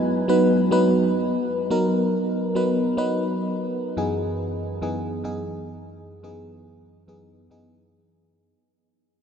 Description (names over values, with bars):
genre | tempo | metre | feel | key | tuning
pop | 106 BPM | 4/4 | straight | unclear | A4 = 440 Hz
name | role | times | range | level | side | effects
FM electric piano | accompaniment | 0.0-8.5 s | F#2 to B4 | -21 LUFS | equal | chorus, phaser
room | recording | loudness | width
wet huge ambient reverb, RT60 8.1 s | dreamy mix soaked in reverb | -20 LUFS | side -7 dB against mid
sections
0.0-8.5 A section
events
fade-out 0.0-8.5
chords
0.0 B/F#; 4.0 Emaj7/F#